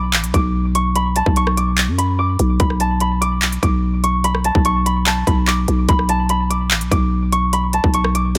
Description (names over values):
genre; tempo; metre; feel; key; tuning
hip hop, trap; 146 BPM; 4/4; half-time; B minor; A4 = 439 Hz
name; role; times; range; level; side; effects
concert harp; melody; 0.0-8.4 s; A5 to D6; -23 LUFS; equal; low-pass filter, digital delay
growling 808-style bass; bass; 0.0-8.4 s; A1 to F#2; -20 LUFS; equal; none
trap drum kit; drums; 0.1-8.4 s; handclaps, hi-hat, kick drum, rim click, snare drum; -21 LUFS; equal; none
room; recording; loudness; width
little or no reverb; none; -17 LUFS; mono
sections
0.0-8.4 A section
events
none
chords
0.0 Bm7; 2.6 Bm; 5.9 Bm7